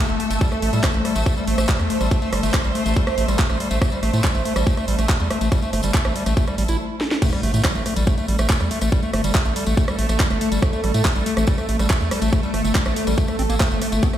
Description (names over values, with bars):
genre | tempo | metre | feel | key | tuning
psychedelic trance | 141 BPM | 4/4 | straight | A minor | A4 = 440 Hz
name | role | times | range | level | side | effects
evolving wavetable pad | sustained chords | 0.0-14.2 s | A3 to D5 | -27 LUFS | equal | ensemble chorus, built-in reverb, phaser, sidechain pumping
overdriven acid bass | riff | 0.0-14.2 s | G3 to E4 | -25 LUFS | moving between left 4 dB and right 2 dB | auto-pan, sidechain pumping, dub echo
clear studio string section | texture | 0.0-14.2 s | A3 to E6 | -32 LUFS | left 2 dB | sidechain pumping
round analog bass | bass | 0.1-14.0 s | G1 to A2 | -22 LUFS | equal | none
garage drum kit | drums | 0.1-14.2 s | crash cymbal, handclaps, hi-hat, rim click, snare drum | -26 LUFS | right 1 dB | overdrive
tambourine | percussion | 0.1-14.2 s | none | -35 LUFS | left 2 dB | none
electronic kick drum | drums | 0.4-14.1 s | none | -19 LUFS | equal | overdrive
impact | sound effects | 7.2-8.9 s | none | -29 LUFS | equal | none
room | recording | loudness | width
light reverb, digital ambience | played on a big sound system in a bare room, stone room reverb | -18 LUFS | side -11 dB against mid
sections
0.0-7.2 A section; 7.2-14.2 B section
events
stop 6.8-7.2; drum fill 7.0; drop 7.2-14.2; impact 7.2-8.9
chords
0.0 A5